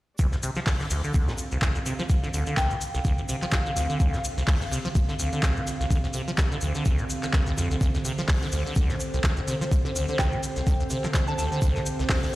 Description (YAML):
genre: acid house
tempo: 126 BPM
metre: 4/4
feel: swing 57% on 16ths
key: D minor pentatonic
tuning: A4 = 440 Hz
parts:
  - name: warbly tape-like pad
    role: sustained chords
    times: 0.9-12.4 s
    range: D3 to F5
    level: -32 LUFS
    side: right 1 dB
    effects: chorus, built-in reverb, sidechain pumping
  - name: acid bass, saw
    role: riff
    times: 0.2-12.3 s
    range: C2 to F3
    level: -28 LUFS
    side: equal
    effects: analog chorus, cassette tape, dub echo
  - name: damped 70s drum kit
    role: drums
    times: 0.2-12.3 s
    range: hi-hat, shaker, snare drum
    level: -39 LUFS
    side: equal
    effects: sidechain pumping on hats, high-pass filter on hats, high-pass filter on snare, sidechain pumping on perc, high-pass filter on perc, high-pass filter on room
  - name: electronic kick drum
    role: drums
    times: 0.2-12.2 s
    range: none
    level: -24 LUFS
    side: equal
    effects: overdrive
  - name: maracas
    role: percussion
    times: 0.2-12.3 s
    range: none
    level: -37 LUFS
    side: left 1 dB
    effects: none
  - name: clear studio string section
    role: texture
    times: 0.2-12.4 s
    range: D4 to F5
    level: -45 LUFS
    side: right 1 dB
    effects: none
  - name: electronic handclaps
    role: drums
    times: 0.7-12.2 s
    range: none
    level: -32 LUFS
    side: equal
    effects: none
  - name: soft synth bell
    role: melody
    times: 2.6-3.0, 10.2-11.5 s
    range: G5 to A5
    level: -35 LUFS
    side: equal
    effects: chorus, phaser, dub echo
room: light reverb, small room reverb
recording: played on a big sound system in a bare room, stone room reverb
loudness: -23 LUFS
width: side -17 dB against mid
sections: 0.2-12.4 A section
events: none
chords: 0.2 Dm7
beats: | 0.19 0.67 1.14 1.62 | 2.10 2.57 3.05 3.52 | 4.00 4.48 4.95 5.43 | 5.91 6.38 6.86 7.33 | 7.81 8.29 8.76 9.24 | 9.72 10.19 10.67 11.14 | 11.62 12.10